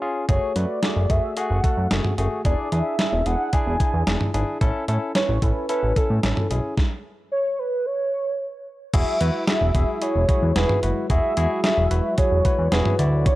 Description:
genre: synth-pop.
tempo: 111 BPM.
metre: 4/4.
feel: straight.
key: unclear.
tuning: A4 = 440 Hz.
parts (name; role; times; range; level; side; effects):
barky tine electric piano; accompaniment; 0.0-13.4 s; A3 to D5; -27 LUFS; left 2 dB; medium stereo tremolo.
warm velvety synth lead; melody; 0.3-13.4 s; A4 to G#5; -25 LUFS; right 1 dB; chorus, tape echo.
fat analog bass; bass; 0.3-13.3 s; E1 to A2; -22 LUFS; equal; none.
clean 12-bit digital drum machine; drums; 0.3-13.4 s; crash cymbal, hi-hat, kick drum, snare drum, toms; -22 LUFS; equal; none.
brassy analog pad; sustained chords; 8.9-13.4 s; E3 to F#4; -31 LUFS; equal; chorus.
room: little or no reverb.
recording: dry, gritty hardware recording, cassette tape.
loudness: -19 LUFS.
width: side -17 dB against mid.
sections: 0.0-8.9 A section; 8.9-13.4 B section.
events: stop 6.8-8.9.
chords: 0.3 F#madd9; 2.5 E7; 4.6 A; 6.8 N.C.; 8.9 Eadd9.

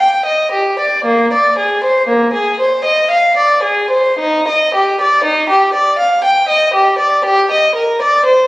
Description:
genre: classical, baroque-style suite movement for unaccompanied violin.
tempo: 53-61 BPM.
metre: 3/4.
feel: rubato.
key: Eb major.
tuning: A4 = 440 Hz.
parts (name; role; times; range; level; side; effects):
warm violin; solo; 0.0-8.5 s; Bb3 to G5; -10 LUFS; equal; none.
room: moderate recital hall reverb, RT60 1.7 s.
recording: recorded on a phone in the room, club reverb, lossy compression artefacts.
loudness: -10 LUFS.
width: side -19 dB against mid.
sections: 0.0-8.5 A section.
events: none.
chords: none.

